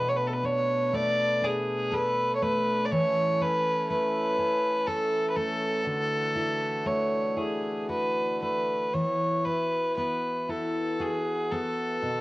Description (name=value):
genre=celtic folk, Celtic slow air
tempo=59 BPM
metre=3/4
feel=uneven beats, rubato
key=unclear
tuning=A4 = 440 Hz
part: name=warm fiddle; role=melody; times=0.0-12.2 s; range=G#4 to D5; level=-26 LUFS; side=equal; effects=none
part: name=picked steel-string acoustic guitar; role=accompaniment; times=0.0-12.2 s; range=B2 to A4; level=-32 LUFS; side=left 1 dB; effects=cassette tape
part: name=pedal harmonium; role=sustained chords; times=0.0-12.2 s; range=D3 to B4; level=-37 LUFS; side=right 1 dB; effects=cassette tape
room=light reverb, small room ambience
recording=home recording on cassette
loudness=-25 LUFS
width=side -19 dB against mid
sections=0.0-12.2 A section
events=none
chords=0.0 Bm7; 2.9 A/E; 5.8 Dadd9; 8.9 Esus2